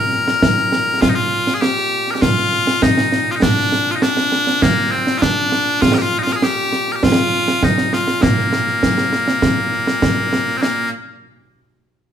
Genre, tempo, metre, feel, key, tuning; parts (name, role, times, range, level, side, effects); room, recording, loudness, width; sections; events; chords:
scottish traditional, Scottish pipe music; 100 BPM; 4/4; straight; Bb major; A4 = 440 Hz
loud bright bagpipes; melody; 0.0-10.9 s; Bb2 to Bb4; -17 LUFS; left 1 dB
concert snare drum and concert bass drum; drums; 0.1-10.9 s; -17 LUFS; right 1 dB
moderate large studio reverb, RT60 1.1 s; band playing live in one room; -14 LUFS; side -9 dB against mid
0.0-1.0 A section; 1.0-10.6 B section; 10.6-12.1 C section